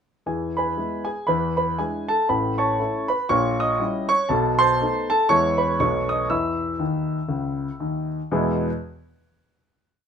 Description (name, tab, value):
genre	jazz, stride piano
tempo	119 BPM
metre	4/4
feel	swing 59% on 8ths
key	E major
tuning	A4 = 440 Hz
part	warm grand piano	solo	0.3-8.7 s	A1 to E6	-20 LUFS	equal	none
room	moderate studio reverb, RT60 0.8 s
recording	minimal, uncompressed stereo recording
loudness	-20 LUFS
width	side -7 dB against mid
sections	0.3-8.3 A section; 8.3-10.1 final chord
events	grand piano fill 6.8-8.3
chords	0.3 E; 1.3 E7; 2.3 A; 3.3 A#dim7; 4.3 B7b9; 5.3 E; 5.8 B9; 6.3 E5; 8.3 E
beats	| 0.27 0.77 1.28 1.78 | 2.28 2.79 3.29 3.79 | 4.30 4.80 5.30 5.81 | 6.31 6.81 7.32 7.82 | 8.32